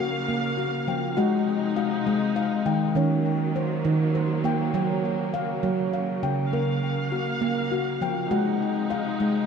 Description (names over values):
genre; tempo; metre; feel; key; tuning
world meditative, meditative tuned percussion; 67 BPM (dotted quarters); 6/8; straight; unclear; A4 = 444 Hz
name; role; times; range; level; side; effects
warm studio string section; sustained chords; 0.0-9.5 s; C3 to F5; -30 LUFS; right 1 dB; shimmer reverb
handpan; arpeggios; 0.0-9.5 s; Db3 to G5; -23 LUFS; equal; ping-pong delay, shimmer reverb
room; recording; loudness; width
wet scoring stage reverb, RT60 2.1 s; none; -23 LUFS; side -6 dB against mid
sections
0.0-9.5 A section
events
none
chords
0.0 Bbm; 1.2 Ab; 3.0 Ebm; 4.7 Gb; 8.3 Ab